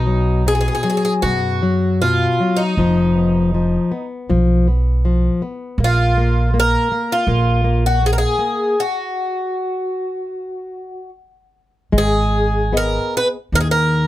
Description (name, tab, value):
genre	fado-style ballad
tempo	72-83 BPM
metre	4/4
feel	rubato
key	Eb minor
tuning	A4 = 441 Hz
part	picked twelve-string acoustic guitar	melody	0.0-14.1 s	D#4 to Cb5	-19 LUFS	equal	none
part	flamenco guitar	accompaniment	0.0-14.1 s	B2 to Eb5	-19 LUFS	left 3 dB	none
part	upright bass	bass	0.0-14.1 s	F1 to F#2	-18 LUFS	right 1 dB	none
room	light reverb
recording	close, detailed microphones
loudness	-15 LUFS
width	side -15 dB against mid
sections	0.0-11.9 A section; 11.9-14.1 B section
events	stop 8.8-11.9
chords	0.0 B; 2.8 Ebsus2/F; 5.8 Bb5; 8.8 N.C.; 11.9 Abm